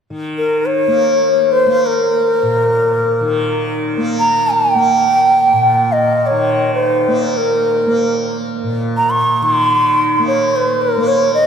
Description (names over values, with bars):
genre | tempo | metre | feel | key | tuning
indian classical | free time | none | none | Bb raga bageshri | A4 = 436 Hz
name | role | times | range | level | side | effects
tanpura | drone | 0.1-11.5 s | Bb2 to Bb3 | -20 LUFS | right 1 dB | stereo widening
bansuri | melody | 0.4-11.5 s | Bb4 to Db6-22c | -13 LUFS | equal | none
room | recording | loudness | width
wet cathedral reverb, RT60 5.4 s | in a vast, echoing space | -12 LUFS | side -7 dB against mid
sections
0.1-11.5 A section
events
none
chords
none